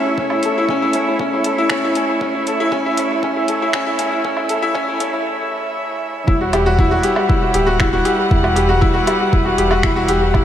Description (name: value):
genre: piano and strings electronica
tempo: 118 BPM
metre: 4/4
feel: straight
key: E dorian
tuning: A4 = 440 Hz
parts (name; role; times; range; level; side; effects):
- warm string quartet; sustained chords; 0.0-10.4 s; G3 to F#5; -21 LUFS; right 2 dB; none
- bright upright piano; riff; 0.0-10.4 s; C#4 to A4; -17 LUFS; left 2 dB; digital delay
- dark detuned saw bass; bass; 0.2-10.4 s; D1 to C#2; -20 LUFS; equal; sidechain pumping, high-pass filter
- electronic kick drum; drums; 0.2-10.4 s; none; -19 LUFS; equal; overdrive
- deep house drum kit; drums; 0.3-10.4 s; finger snaps, hi-hat, woodblock; -24 LUFS; right 2 dB; overdrive, high-pass filter on hats, high-pass filter on snare, high-pass filter on perc
room: moderate lush hall reverb, RT60 2.8 s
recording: high-pass filter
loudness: -14 LUFS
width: side -10 dB against mid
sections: 0.0-6.3 A section; 6.3-10.4 B section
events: build-up 0.0-6.3; break 5.3-6.3; drop 6.3-10.4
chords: 0.0 A; 6.3 Emadd9